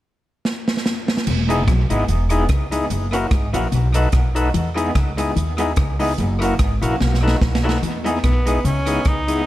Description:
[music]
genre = ska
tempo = 146 BPM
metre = 4/4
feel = swing 55% on 8ths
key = E major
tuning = A4 = 440 Hz
[part]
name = swinging big-band drum kit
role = drums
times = 0.5-9.4 s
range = crash cymbal, hi-hat, kick drum, rim click, snare drum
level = -22 LUFS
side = right 1 dB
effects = tape echo
[part]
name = mellow electric guitar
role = riff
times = 1.3-9.2 s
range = E2 to E3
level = -27 LUFS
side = left 4 dB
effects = none
[part]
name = upright bass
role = bass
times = 1.3-9.4 s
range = E1 to E2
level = -20 LUFS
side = equal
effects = none
[part]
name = electric guitar through a small old amp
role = accompaniment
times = 1.5-9.4 s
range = E3 to G#4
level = -25 LUFS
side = right 1 dB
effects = tremolo, tape echo, plate reverb
[part]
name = percussive tonewheel organ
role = stabs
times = 1.5-9.4 s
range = D#4 to B4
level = -24 LUFS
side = left 4 dB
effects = overdrive, tape echo, plate reverb
[part]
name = clear tenor saxophone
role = melody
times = 8.2-9.5 s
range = B3 to D#4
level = -23 LUFS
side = equal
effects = tape echo, plate reverb
[sound]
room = light reverb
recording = none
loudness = -17 LUFS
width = side -15 dB against mid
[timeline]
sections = 0.0-1.3 A section; 1.3-7.8 B section; 7.8-9.5 C section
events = drum fill 0.5-1.3, 7.0-7.8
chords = 0.0 N.C.; 1.3 Emaj7; 2.9 F#7; 3.7 B7; 4.5 Emaj7; 6.2 F#7; 7.0 B7; 7.8 Emaj7

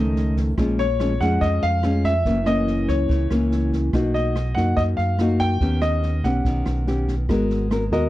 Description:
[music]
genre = bossa nova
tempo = 143 BPM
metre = 4/4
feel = straight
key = Eb minor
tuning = A4 = 439 Hz
[part]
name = warm grand piano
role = melody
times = 0.0-8.1 s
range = Db5 to G5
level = -25 LUFS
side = left 1 dB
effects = none
[part]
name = nylon-string guitar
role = accompaniment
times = 0.0-8.1 s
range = F2 to Bb4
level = -22 LUFS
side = left 1 dB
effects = none
[part]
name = fingered electric bass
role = bass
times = 0.0-8.1 s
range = Gb1 to F#2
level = -23 LUFS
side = right 1 dB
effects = none
[part]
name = open jazz drum kit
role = drums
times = 0.2-8.0 s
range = kick drum, rim click, snare drum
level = -29 LUFS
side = right 1 dB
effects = none
[sound]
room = studio reverb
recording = dry, close 1970s-style studio recording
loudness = -18 LUFS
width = side -15 dB against mid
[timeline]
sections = 0.0-8.1 A section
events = none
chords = 0.0 Faug7; 0.6 Bbm7; 2.3 Gb7; 3.9 Bmaj7; 5.6 Eb7alt; 7.3 Abm9

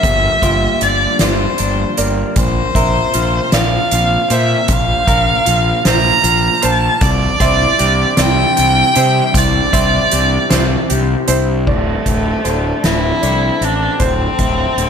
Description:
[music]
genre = post-rock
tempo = 52 BPM (dotted quarters)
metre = 6/8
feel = straight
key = D minor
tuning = A4 = 438 Hz
[part]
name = rich violin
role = melody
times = 0.0-14.9 s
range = A3 to Bb5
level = -16 LUFS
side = equal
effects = analog delay
[part]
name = airy breathy pad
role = sustained chords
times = 0.0-14.9 s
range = Bb2 to A5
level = -24 LUFS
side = equal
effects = chorus, phaser
[part]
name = electric guitar through a small old amp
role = arpeggios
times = 0.0-14.9 s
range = D2 to C5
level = -22 LUFS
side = left 2 dB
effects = analog delay
[part]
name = felt-muted upright piano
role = arpeggios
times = 0.0-14.8 s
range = F4 to F5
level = -24 LUFS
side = right 3 dB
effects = analog delay
[part]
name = fuzz fingered electric bass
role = bass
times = 0.0-14.9 s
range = D1 to C3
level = -18 LUFS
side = equal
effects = overdrive
[part]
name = soft-mallet drum kit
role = drums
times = 0.0-14.9 s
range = crash cymbal, hi-hat, kick drum, snare drum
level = -18 LUFS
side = equal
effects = none
[sound]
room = light reverb, studio reverb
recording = none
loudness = -11 LUFS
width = side -7 dB against mid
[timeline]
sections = 0.0-11.7 A section; 11.7-14.9 B section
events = none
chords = 0.0 Gm7; 2.4 Bbsus2; 7.0 Cadd9; 11.7 Dm7

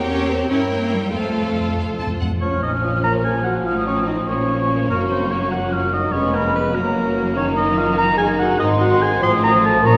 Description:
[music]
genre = quick classical-period movement for symphony orchestra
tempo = 97 BPM (dotted quarters)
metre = 6/8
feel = straight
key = Bb minor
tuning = A4 = 436 Hz
[part]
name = rich studio violin section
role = melody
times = 0.0-10.0 s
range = Db4 to A5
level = -35 LUFS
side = equal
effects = none
[part]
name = rich studio violin section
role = second line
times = 0.0-10.0 s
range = Bb3 to C#5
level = -31 LUFS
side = equal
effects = none
[part]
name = rich studio viola section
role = accompaniment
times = 0.0-10.0 s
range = Eb3 to A4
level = -30 LUFS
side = equal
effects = none
[part]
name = bright studio double bass section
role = bass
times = 0.0-10.0 s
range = F1 to G2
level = -29 LUFS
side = equal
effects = none
[part]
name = clear studio cello section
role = bass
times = 0.1-10.0 s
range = F2 to C#4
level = -27 LUFS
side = equal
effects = none
[part]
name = timpani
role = percussion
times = 1.1-2.4 s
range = F2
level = -29 LUFS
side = equal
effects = none
[part]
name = bright large flute ensemble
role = second line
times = 2.4-10.0 s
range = Bb5 to F6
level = -27 LUFS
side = equal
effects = none
[part]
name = warm oboe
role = second line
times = 2.4-10.0 s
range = Bb4 to C6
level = -24 LUFS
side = equal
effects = none
[part]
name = dark bassoon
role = accompaniment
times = 2.4-10.0 s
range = Eb3 to Ab3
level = -30 LUFS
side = equal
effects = none
[part]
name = dark French horn section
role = sustained chords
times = 2.4-10.0 s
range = Bb3 to C5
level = -25 LUFS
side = equal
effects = none
[sound]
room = wet concert hall reverb, RT60 1.9 s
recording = none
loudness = -19 LUFS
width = mono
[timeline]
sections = 0.0-2.4 A section; 2.4-10.0 B section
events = timpani fill 1.1-2.4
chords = 0.0 Edim7; 1.1 F; 2.4 Bbm; 3.7 F7/A; 4.3 Bbm; 4.9 Gb; 6.1 Db7/F; 6.7 Gb; 7.4 Ebm/Gb; 8.6 Ab; 9.2 F7/A

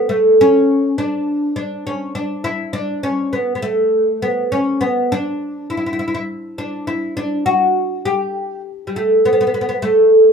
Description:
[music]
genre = arabic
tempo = 102 BPM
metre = 4/4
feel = straight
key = D maqam ajam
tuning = A4 = 440 Hz
[part]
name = oud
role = solo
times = 0.0-10.3 s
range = G3 to G4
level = -15 LUFS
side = equal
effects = none
[sound]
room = moderate studio ambience, RT60 0.5 s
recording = band playing live in one room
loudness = -15 LUFS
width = side -6 dB against mid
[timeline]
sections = 0.0-10.3 A section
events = none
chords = none

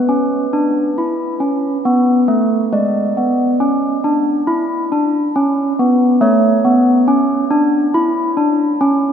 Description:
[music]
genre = classical, tune for handbells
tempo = 69 BPM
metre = 4/4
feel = straight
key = unclear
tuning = A4 = 441 Hz
[part]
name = handbells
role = solo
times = 0.0-9.1 s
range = G#3 to D5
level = -13 LUFS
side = equal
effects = none
[sound]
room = wet cathedral reverb, RT60 5.2 s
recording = none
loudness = -13 LUFS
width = side -8 dB against mid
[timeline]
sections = 0.0-9.1 A section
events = none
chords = 0.0 E5; 2.7 E7(no3) (rootless); 6.2 N.C.

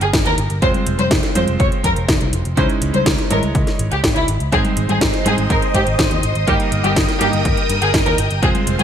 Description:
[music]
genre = italo disco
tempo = 123 BPM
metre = 4/4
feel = straight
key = unclear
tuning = A4 = 440 Hz
[part]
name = dark symphonic violin section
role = melody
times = 0.0-8.8 s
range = Fb4 to Db5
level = -21 LUFS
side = equal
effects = ping-pong delay
[part]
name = warm electric grand piano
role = stabs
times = 0.0-8.8 s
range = G3 to Eb5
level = -24 LUFS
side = right 6 dB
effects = none
[part]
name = vintage muted picked electric bass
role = bass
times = 0.0-8.8 s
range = F1 to Ab2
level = -20 LUFS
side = equal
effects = none
[part]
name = house drum kit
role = drums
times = 0.0-8.8 s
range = congas, hi-hat, snare drum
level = -21 LUFS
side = left 1 dB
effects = overdrive, gated reverb
[part]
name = electronic kick drum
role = drums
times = 0.1-8.5 s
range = none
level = -21 LUFS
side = equal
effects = overdrive
[part]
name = phased string machine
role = sustained chords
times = 4.5-8.8 s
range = Ab3 to Eb6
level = -22 LUFS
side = equal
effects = ensemble chorus, phaser
[sound]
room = light reverb, digital ambience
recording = bright 1980s-style digital production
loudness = -14 LUFS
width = side -9 dB against mid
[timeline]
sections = 0.0-8.8 A section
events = none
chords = 0.0 Eb/G; 0.6 Fm; 2.6 Dbmadd9; 4.5 Ab; 6.5 Eb/G

